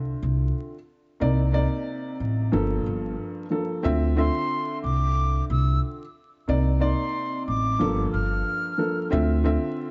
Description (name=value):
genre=hip hop, boom-bap hip-hop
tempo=91 BPM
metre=4/4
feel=swing 56% on 16ths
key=D minor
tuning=A4 = 440 Hz
part: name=dark upright piano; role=accompaniment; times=0.0-9.9 s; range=G2 to E5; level=-29 LUFS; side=equal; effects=cassette tape, high-pass filter, low-pass filter
part: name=upright bass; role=bass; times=0.0-9.6 s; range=G1 to D2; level=-26 LUFS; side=equal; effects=none
part: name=concert flute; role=melody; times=4.2-9.1 s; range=C6 to F6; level=-31 LUFS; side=equal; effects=high-pass filter, low-pass filter, delay
room=studio reverb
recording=vinyl crackle, nothing above 7.8 kHz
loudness=-25 LUFS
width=mono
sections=0.0-3.8 A section; 3.8-9.9 A section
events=none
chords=0.0 Dm9; 1.2 Cm9; 2.5 Gm9; 3.8 Dm9; 6.5 Cm9; 7.8 Gm9; 9.1 Dm9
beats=0.55 | 1.21 1.87 2.52 3.18 | 3.84 4.50 5.16 5.82 | 6.48 7.14 7.80 8.46 | 9.12 9.78